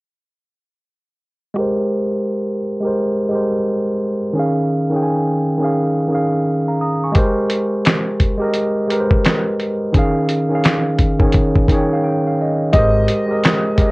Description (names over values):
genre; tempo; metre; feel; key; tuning
lo-fi hip hop; 86 BPM; 4/4; swing 62% on 16ths; Ab major; A4 = 440 Hz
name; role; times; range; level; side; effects
tine electric piano; accompaniment; 1.5-13.9 s; Eb3 to Eb6; -16 LUFS; equal; cassette tape, low-pass filter
dusty soul sampler-style drum kit; drums; 7.1-13.9 s; handclaps, hi-hat, kick drum, snare drum; -15 LUFS; equal; none
clear upright piano; melody; 12.7-13.9 s; Eb5; -19 LUFS; right 1 dB; low-pass filter
upright bass; bass; 12.7-13.1 s; Ab1; -17 LUFS; equal; transformer saturation
room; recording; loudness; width
light reverb; worn, warbling old tape, cassette tape, warbly pitch drift; -15 LUFS; side -23 dB against mid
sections
1.6-12.7 A section; 12.7-13.9 B section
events
filter sweep on tine electric piano 1.6-12.7; tine electric piano fill 11.3-12.7; break 12.0-12.7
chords
1.6 Abmaj9; 4.4 Eb9sus4; 7.2 Abmaj9; 9.9 Eb9sus4; 12.7 Abmaj9